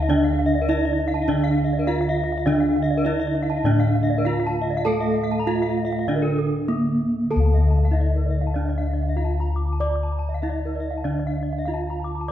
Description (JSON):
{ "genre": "gamelan", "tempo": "98 BPM", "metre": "4/4", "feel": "uneven beats", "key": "D pelog", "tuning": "A4 = 442 Hz", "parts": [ { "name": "gamelan-type bronze metallophone", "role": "melody", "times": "0.0-12.3 s", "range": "Bb3 to D5", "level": "-25 LUFS", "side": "right 2 dB", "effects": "none" }, { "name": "gamelan-type bronze metallophone", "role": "accompaniment", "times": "0.0-7.3 s", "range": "D3 to A3", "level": "-29 LUFS", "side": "right 2 dB", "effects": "none" }, { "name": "gamelan-type bronze metallophone", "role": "arpeggios", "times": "0.0-12.3 s", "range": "A4 to D6", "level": "-29 LUFS", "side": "left 4 dB", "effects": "none" }, { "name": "gamelan-type bronze metallophone", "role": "arpeggios", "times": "0.0-12.2 s", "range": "A4 to Bb5", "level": "-32 LUFS", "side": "right 7 dB", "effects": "none" }, { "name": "gamelan-type bossed gongs", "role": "bass", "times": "0.0-12.3 s", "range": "D2 to D5", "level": "-22 LUFS", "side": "left 1 dB", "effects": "none" } ], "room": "wet recital hall reverb, RT60 1.6 s", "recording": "recorded in a church or concert hall", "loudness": "-20 LUFS", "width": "side -11 dB against mid", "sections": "0.0-7.3 A section; 7.3-12.3 B section", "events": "none", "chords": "none" }